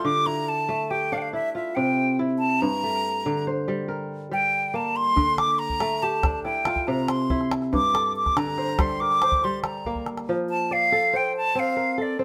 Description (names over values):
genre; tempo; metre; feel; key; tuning
west african traditional, West African string and xylophone music; 94 BPM (dotted quarters); 12/8; straight; F major; A4 = 440 Hz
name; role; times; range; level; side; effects
bright silver concert flute; melody; 0.0-12.2 s; D5 to D6; -26 LUFS; equal; none
kora; arpeggios; 0.0-12.2 s; G2 to D5; -29 LUFS; equal; none
calabash; percussion; 5.2-10.3 s; none; -30 LUFS; equal; none
room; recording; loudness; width
moderate stone room reverb, RT60 0.9 s; band playing live in one room; -24 LUFS; mono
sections
0.0-10.3 A section; 10.3-12.2 B section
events
drum fill 9.9-10.3; flute solo 10.3-12.2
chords
0.0 D5; 1.3 C; 2.6 Gm; 5.2 D5; 6.4 C; 7.7 Gm; 10.3 F